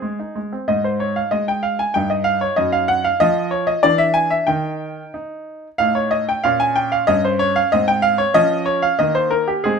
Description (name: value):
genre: classical-period piano sonatina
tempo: 94 BPM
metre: 2/4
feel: uneven beats, rubato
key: Ab major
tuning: A4 = 440 Hz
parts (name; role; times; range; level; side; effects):
- clear baby grand piano; solo; 0.0-9.8 s; Gb2 to Ab5; -16 LUFS; equal; none
room: light reverb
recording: minimal, uncompressed stereo recording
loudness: -16 LUFS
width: side -6 dB against mid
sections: 0.7-9.8 A section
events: none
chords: 0.0 Ab; 0.7 Ab5; 1.9 Eb/G; 2.6 Ebmadd9/Gb; 3.2 N.C.; 3.8 E7; 4.5 N.C.; 5.8 A7#11; 6.4 Bbm; 7.1 Eb13/G; 7.7 Ab; 8.3 Db/F; 9.0 Eb5